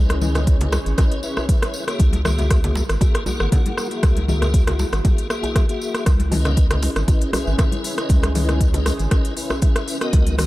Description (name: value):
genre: afro house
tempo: 118 BPM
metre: 4/4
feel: swing 53% on 16ths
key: C# dorian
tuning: A4 = 440 Hz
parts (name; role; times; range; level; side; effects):
- dark analog pad; sustained chords; 0.0-10.5 s; B3 to C#5; -31 LUFS; equal; chorus, sidechain pumping
- tonewheel organ; stabs; 0.0-10.5 s; A#3 to F#5; -28 LUFS; left 2 dB; overdrive, chorus vibrato, slow rotary speaker, sidechain pumping, dub echo
- round analog bass; bass; 0.0-10.5 s; G#1 to C#2; -21 LUFS; equal; sidechain pumping
- afro-pop drum kit; drums; 0.1-10.5 s; hi-hat, rim click, toms; -26 LUFS; equal; none
- congas; percussion; 0.1-10.5 s; none; -29 LUFS; left 2 dB; none
- tambourine; percussion; 0.1-10.5 s; none; -37 LUFS; left 1 dB; none
- electronic kick drum; drums; 0.5-10.2 s; none; -17 LUFS; equal; none
- djembe; percussion; 0.6-10.5 s; none; -30 LUFS; right 1 dB; none
room: little or no reverb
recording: dark, warm production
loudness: -17 LUFS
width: side -18 dB against mid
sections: 0.0-10.5 A section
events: none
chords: 0.0 C#m9; 2.0 F#9; 6.1 C#m9